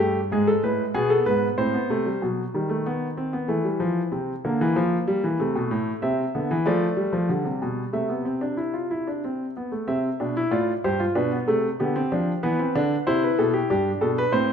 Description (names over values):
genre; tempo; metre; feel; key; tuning
classical, baroque-style 3-part fugue for grand piano; 94 BPM; 3/4; straight; C major from 6.0 s; A4 = 440 Hz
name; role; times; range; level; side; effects
warm grand piano; solo; 0.0-14.5 s; G2 to E5; -22 LUFS; equal; none
room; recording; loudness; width
moderate recital hall reverb, RT60 1.4 s; minimal, uncompressed stereo recording; -22 LUFS; side -7 dB against mid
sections
0.0-2.2 A section; 2.2-9.9 B section; 9.9-14.5 C section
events
none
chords
0.3 G#m; 1.6 Am; 2.2 B7; 3.5 Em; 4.1 C7; 5.4 Amadd9; 6.0 C; 6.7 Dm/F; 7.3 G; 7.9 C; 11.2 Bm7; 11.8 G/D; 13.1 C; 13.7 G